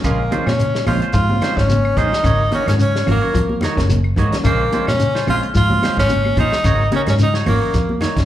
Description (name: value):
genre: afrobeat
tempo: 109 BPM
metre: 4/4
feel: swing 55% on 16ths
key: Bb minor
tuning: A4 = 440 Hz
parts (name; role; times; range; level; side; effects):
- bright tenor saxophone; melody; 0.0-8.0 s; Bb3 to F4; -19 LUFS; equal; slapback echo
- overdriven reed electric piano; accompaniment; 0.0-8.2 s; Db3 to Db4; -26 LUFS; right 1 dB; fast tremolo
- electric guitar at the edge of break-up; arpeggios; 0.0-8.2 s; Db3 to F3; -25 LUFS; left 4 dB; ensemble chorus
- twangy electric guitar; stabs; 0.0-8.2 s; Ab3 to Db5; -25 LUFS; right 5 dB; slapback echo
- fingered electric bass; bass; 0.0-8.2 s; Gb1 to Bb2; -19 LUFS; equal; none
- warm soul drum kit; drums; 0.0-8.2 s; hi-hat, kick drum, snare drum; -23 LUFS; equal; none
- claves; percussion; 0.0-8.2 s; none; -36 LUFS; left 3 dB; none
- congas; percussion; 0.0-8.2 s; none; -26 LUFS; right 2 dB; none
- shekere; percussion; 0.0-8.2 s; none; -22 LUFS; equal; none
room: light reverb, studio ambience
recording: live gig heard through the venue's PA, club reverb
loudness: -14 LUFS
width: side -12 dB against mid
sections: 0.0-8.2 A section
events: none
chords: 0.0 Bbm9; 2.2 Ab9sus4; 4.4 Bbm9; 6.6 Ab9sus4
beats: | 0.05 0.60 1.15 1.70 | 2.25 2.80 3.35 3.90 | 4.45 5.00 5.55 6.09 | 6.64 7.19 7.74